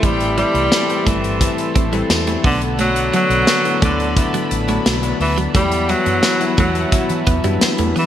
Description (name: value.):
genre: 1980s-style pop.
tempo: 87 BPM.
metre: 4/4.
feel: straight.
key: A dorian.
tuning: A4 = 440 Hz.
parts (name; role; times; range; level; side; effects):
clear tenor saxophone; melody; 0.0-8.1 s; D3 to G3; -20 LUFS; right 1 dB; none.
warm studio violin section; second line; 0.0-8.1 s; D5 to G5; -29 LUFS; left 1 dB; digital delay.
bell-like tine electric piano; accompaniment; 0.0-8.1 s; D3 to G4; -22 LUFS; left 6 dB; wide subtle chorus.
overdriven electric guitar; accompaniment; 0.0-8.1 s; E2 to B3; -28 LUFS; equal; lush chorus.
chorused pulse-width pad; sustained chords; 0.0-8.1 s; E4 to C6; -26 LUFS; right 2 dB; none.
clean electric guitar; riff; 0.0-8.1 s; F#3 to C4; -25 LUFS; right 4 dB; lush chorus.
woody fretless electric bass; bass; 0.0-8.1 s; G1 to E3; -22 LUFS; right 1 dB; none.
modern studio drum kit; drums; 0.0-8.1 s; hi-hat, kick drum, snare drum, tambourine; -19 LUFS; equal; gated reverb.
room: moderate plate reverb, RT60 3.0 s.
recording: bright 1980s-style digital production, faint mains hum.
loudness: -14 LUFS.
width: side -10 dB against mid.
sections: 0.0-8.1 A section.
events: none.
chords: 0.0 Am7; 2.4 Bm7; 5.5 Emadd9.